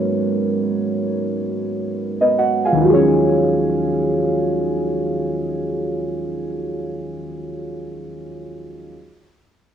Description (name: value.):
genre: hip hop.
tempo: free time.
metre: none.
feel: none.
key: Eb minor.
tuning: A4 = 440 Hz.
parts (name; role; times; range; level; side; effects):
muted felt-like synth keys; accompaniment; 0.0-8.9 s; Eb3 to Ab5; -18 LUFS; right 1 dB; chorus, cassette tape, low-pass filter.
room: wet small room reverb, RT60 0.6 s.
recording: worn, warbling old tape, cassette tape, warbly pitch drift.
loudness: -17 LUFS.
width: side -8 dB against mid.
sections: 0.0-2.8 A section; 2.8-6.4 B section.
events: none.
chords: 0.0 Abm11; 2.8 Ebm11.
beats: free time.